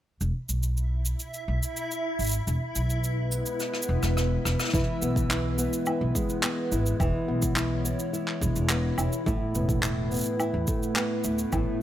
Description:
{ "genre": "folktronica", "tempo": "106 BPM", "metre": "4/4", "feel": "straight", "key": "E major", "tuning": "A4 = 440 Hz", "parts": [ { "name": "upright bass", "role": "bass", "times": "0.2-11.6 s", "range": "E1 to E2", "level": "-28 LUFS", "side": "equal", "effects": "none" }, { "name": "cabasa, rim click, handclaps and woodblock", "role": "drums", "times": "0.2-11.6 s", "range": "none", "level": "-31 LUFS", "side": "equal", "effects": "none" }, { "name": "backwards swelling texture", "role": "texture", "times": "1.3-4.7 s", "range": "E4 to E5", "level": "-36 LUFS", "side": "right 1 dB", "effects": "built-in reverb" }, { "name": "warbly tape-like pad", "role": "sustained chords", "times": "3.0-11.8 s", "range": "G#3 to C#5", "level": "-32 LUFS", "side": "left 2 dB", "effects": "chorus, built-in reverb, phaser" }, { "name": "nylon-string guitar", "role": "arpeggios", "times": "4.7-11.8 s", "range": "A2 to E4", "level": "-29 LUFS", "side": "right 1 dB", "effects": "digital delay" }, { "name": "electronic kick drum", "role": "drums", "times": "4.7-11.6 s", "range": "none", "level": "-30 LUFS", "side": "equal", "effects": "none" } ], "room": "light reverb", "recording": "none", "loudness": "-25 LUFS", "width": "side -12 dB against mid", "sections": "0.2-4.7 A section; 4.7-11.8 B section", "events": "filter sweep on upright bass 0.2-4.7; drum fill 3.6-4.7", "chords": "0.2 E; 9.3 Asus2", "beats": "| 0.21 0.77 1.34 1.91 | 2.47 3.04 3.60 4.17 | 4.74 5.30 5.87 6.43 | 7.00 7.57 8.13 8.70 | 9.27 9.83 10.40 10.96 | 11.53" }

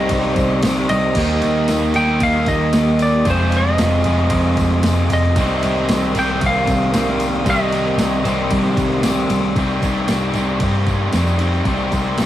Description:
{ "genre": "rock, shoegaze and dream pop", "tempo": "114 BPM", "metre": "4/4", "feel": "straight", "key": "C minor", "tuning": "A4 = 439 Hz", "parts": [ { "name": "lightly driven lead guitar", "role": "melody", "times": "0.0-9.0 s", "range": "C5 to G5", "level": "-21 LUFS", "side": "right 1 dB", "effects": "none" }, { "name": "string machine, full ensemble", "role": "sustained chords", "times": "0.0-9.5 s", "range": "G4 to Eb6", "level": "-29 LUFS", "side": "equal", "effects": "none" }, { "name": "crunchy overdriven guitar", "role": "riff", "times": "0.0-12.3 s", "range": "F2 to Ab4", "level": "-22 LUFS", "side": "left 4 dB", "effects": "none" }, { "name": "crunchy overdriven guitar", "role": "riff", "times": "0.0-9.6 s", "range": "F2 to Eb4", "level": "-25 LUFS", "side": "equal", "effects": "none" }, { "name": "overdriven electric guitar", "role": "riff", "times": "0.0-12.3 s", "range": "C3 to G4", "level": "-22 LUFS", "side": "right 3 dB", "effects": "none" }, { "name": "vintage muted picked electric bass", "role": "bass", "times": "0.0-12.3 s", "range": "F1 to G2", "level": "-20 LUFS", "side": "equal", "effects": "none" }, { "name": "crisp 8-bit digital drum machine", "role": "drums", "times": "0.1-12.3 s", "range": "crash cymbal, kick drum, ride cymbal, snare drum", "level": "-24 LUFS", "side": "equal", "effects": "overdrive" }, { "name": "tambourine", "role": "percussion", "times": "0.1-12.3 s", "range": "none", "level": "-39 LUFS", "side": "right 6 dB", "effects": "none" } ], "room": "moderate stone room reverb, RT60 1.1 s", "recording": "rough rehearsal-room recording", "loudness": "-15 LUFS", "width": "side -13 dB against mid", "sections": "0.0-9.6 A section; 9.6-12.3 B section", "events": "none", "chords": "0.0 Cm7; 1.2 Eb; 3.3 Fm7; 5.4 Cm7; 9.6 Cm", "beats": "0.10 0.63 | 1.16 1.68 2.21 2.73 | 3.26 3.78 4.31 4.83 | 5.36 5.89 6.41 6.94 | 7.46 7.99 8.51 9.04 | 9.56 10.09 10.61 11.14 | 11.66 12.19" }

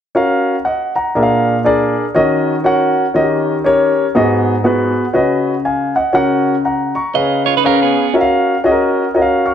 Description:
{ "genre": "gospel", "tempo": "120 BPM", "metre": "4/4", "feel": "swing 61% on 8ths", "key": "F# major", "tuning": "A4 = 442 Hz", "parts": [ { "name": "warm grand piano", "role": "accompaniment", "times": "0.1-9.5 s", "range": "G#2 to E#6", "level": "-12 LUFS", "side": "left 1 dB", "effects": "none" }, { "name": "clean electric guitar", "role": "second line", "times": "7.2-8.1 s", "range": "B3 to D#5", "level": "-16 LUFS", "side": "right 9 dB", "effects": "none" } ], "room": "moderate echo chamber reverb, RT60 1.8 s, small room ambience", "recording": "none", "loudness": "-12 LUFS", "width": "side -9 dB against mid", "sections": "0.1-9.5 A section", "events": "none", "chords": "0.1 F#maj7; 1.1 A#7; 2.1 D#m7; 3.2 D#7; 4.2 G#m7; 5.2 C#9sus4; 6.2 F#/C#; 7.2 C#7; 8.2 F#maj7", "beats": "| 0.15 0.65 1.15 1.65 | 2.15 2.65 3.15 3.65 | 4.15 4.65 5.15 5.65 | 6.15 6.65 7.15 7.65 | 8.15 8.65 9.15" }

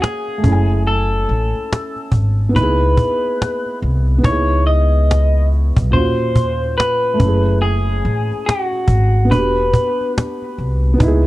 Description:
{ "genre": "lo-fi hip hop", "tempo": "71 BPM", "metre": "4/4", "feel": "swing 60% on 16ths", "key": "C# minor", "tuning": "A4 = 440 Hz", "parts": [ { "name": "electric guitar through a small old amp", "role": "melody", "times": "0.0-10.1 s", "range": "F#4 to D#5", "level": "-20 LUFS", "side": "left 1 dB", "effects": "analog delay" }, { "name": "felt-muted upright piano", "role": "accompaniment", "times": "0.0-11.3 s", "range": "A#2 to G#5", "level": "-22 LUFS", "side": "right 2 dB", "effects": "none" }, { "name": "cajon", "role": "drums", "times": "0.0-11.2 s", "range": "none", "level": "-16 LUFS", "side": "equal", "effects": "vintage 12-bit sampler grit" }, { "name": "upright bass", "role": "bass", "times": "0.4-11.3 s", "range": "E1 to D#2", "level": "-16 LUFS", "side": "equal", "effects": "none" } ], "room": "light reverb", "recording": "dark, warm production", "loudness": "-14 LUFS", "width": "side -17 dB against mid", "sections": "0.0-4.2 A section; 4.2-11.3 B section", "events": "none", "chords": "0.4 F#m9; 2.6 C#m9; 5.9 D#m9; 7.2 F#m9; 9.3 Em9", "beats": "0.02 | 0.86 1.71 2.55 3.40 | 4.24 5.09 5.93 6.78 | 7.62 8.47 9.31 10.16 | 11.00" }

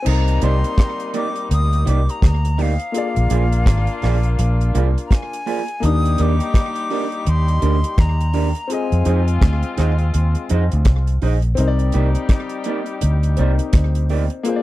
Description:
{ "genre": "lovers rock reggae", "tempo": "83 BPM", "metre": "4/4", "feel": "swing 61% on 16ths", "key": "C minor", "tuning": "A4 = 440 Hz", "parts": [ { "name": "breathy bright jazz flute", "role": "melody", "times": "0.0-9.4 s", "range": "F5 to Eb6", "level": "-27 LUFS", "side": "left 2 dB", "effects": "tape echo" }, { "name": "clear baby grand piano", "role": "accompaniment", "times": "0.0-14.6 s", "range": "Bb3 to Eb5", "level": "-26 LUFS", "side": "left 5 dB", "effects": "slapback echo" }, { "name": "clear horn section", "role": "second line", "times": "0.1-14.6 s", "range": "G3 to Ab4", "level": "-29 LUFS", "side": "left 4 dB", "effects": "none" }, { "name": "vintage muted fingered electric bass", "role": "bass", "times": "0.1-14.3 s", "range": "Ab1 to F2", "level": "-16 LUFS", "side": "equal", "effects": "none" }, { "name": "deep reggae drum kit", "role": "drums", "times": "0.1-14.6 s", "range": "crash cymbal, hi-hat, kick drum, rim click", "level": "-18 LUFS", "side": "equal", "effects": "none" }, { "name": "electric guitar through a small old amp", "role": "stabs", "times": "0.4-14.2 s", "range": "Bb3 to Eb5", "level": "-24 LUFS", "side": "right 7 dB", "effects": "none" } ], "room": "little or no reverb", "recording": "dry, close 1970s-style studio recording", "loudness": "-16 LUFS", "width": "side -16 dB against mid", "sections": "0.1-14.6 A section", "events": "none", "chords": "0.1 Cm9; 2.9 Bb7; 5.8 Ebmaj7; 8.7 Fm7; 11.6 Cm9", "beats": "| 0.06 0.78 1.50 2.22 | 2.94 3.66 4.38 5.10 | 5.82 6.54 7.26 7.98 | 8.70 9.42 10.14 10.86 | 11.58 12.30 13.02 13.74 | 14.46" }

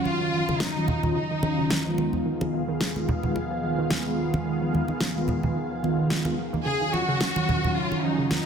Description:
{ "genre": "nu-disco, nu disco", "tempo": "109 BPM", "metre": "4/4", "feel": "swing 56% on 16ths", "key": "Eb minor", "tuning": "A4 = 440 Hz", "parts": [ { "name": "mellow synth brass", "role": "accompaniment", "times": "0.0-8.4 s", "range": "Eb3 to F5", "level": "-27 LUFS", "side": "right 1 dB", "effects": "chorus, digital delay" }, { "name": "lush unison pad", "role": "sustained chords", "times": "0.0-8.5 s", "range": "Eb3 to F5", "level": "-32 LUFS", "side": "equal", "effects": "chorus, phaser, vintage 12-bit sampler grit" }, { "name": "wide unison pluck", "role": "arpeggios", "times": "0.0-8.4 s", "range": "Db3 to Bb3", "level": "-34 LUFS", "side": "right 4 dB", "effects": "none" }, { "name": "warm symphonic violin section", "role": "melody", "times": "0.1-1.9, 6.7-8.5 s", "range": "Eb4 to Ab4", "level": "-28 LUFS", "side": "left 1 dB", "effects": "digital delay" }, { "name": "congas", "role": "percussion", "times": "0.1-8.4 s", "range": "none", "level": "-29 LUFS", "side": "right 1 dB", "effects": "none" }, { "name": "electronic snare drum", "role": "drums", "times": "0.6-8.4 s", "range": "none", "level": "-29 LUFS", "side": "equal", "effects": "small room ambience" } ], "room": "moderate plate reverb, RT60 1.8 s", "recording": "dense, heavily limited modern master", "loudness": "-23 LUFS", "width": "side -7 dB against mid", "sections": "0.0-8.5 A section", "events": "filter sweep on analog synth pad 0.0-8.5", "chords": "0.0 Ebm9; 2.0 Fm7b5/Eb; 6.4 Ebm9", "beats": "| 0.06 0.61 1.16 1.71 | 2.26 2.81 3.36 3.91 | 4.46 5.01 5.56 6.11 | 6.66 7.21 7.76 8.31" }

